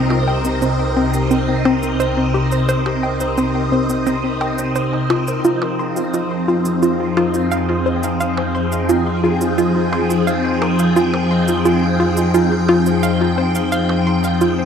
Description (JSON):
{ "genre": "ambient, sequencer-driven space music", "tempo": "87 BPM", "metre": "4/4", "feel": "straight", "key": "F minor", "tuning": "A4 = 439 Hz", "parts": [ { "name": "phased string machine", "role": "sustained chords", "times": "0.0-14.7 s", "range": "C3 to G5", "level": "-18 LUFS", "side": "left 1 dB", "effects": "ensemble chorus, phaser" }, { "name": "concert harp", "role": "arpeggios", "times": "0.0-14.7 s", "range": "Eb4 to Eb5", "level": "-25 LUFS", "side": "left 3 dB", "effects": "auto-pan, tape echo" }, { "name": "hollow square pluck", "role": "riff", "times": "0.0-14.6 s", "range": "C4 to C6", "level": "-20 LUFS", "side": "right 1 dB", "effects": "chorus, tape echo" }, { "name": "fat analog bass", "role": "bass", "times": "0.0-14.7 s", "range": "C2 to F2", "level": "-24 LUFS", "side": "equal", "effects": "none" }, { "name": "percussion blips and cabasa", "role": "percussion", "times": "0.1-14.5 s", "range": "none", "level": "-30 LUFS", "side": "right 4 dB", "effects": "tape echo" } ], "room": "wet plate reverb, RT60 3.8 s", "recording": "echo-heavy mix", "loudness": "-15 LUFS", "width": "side -7 dB against mid", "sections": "0.0-14.7 A section", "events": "none", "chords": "0.0 Cm7; 5.4 Fm7", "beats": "0.62 1.31 2.00 | 2.69 3.38 4.07 4.76 | 5.45 6.14 6.83 7.51 | 8.21 8.89 9.58 10.27 | 10.96 11.65 12.34 13.03 | 13.72 14.41" }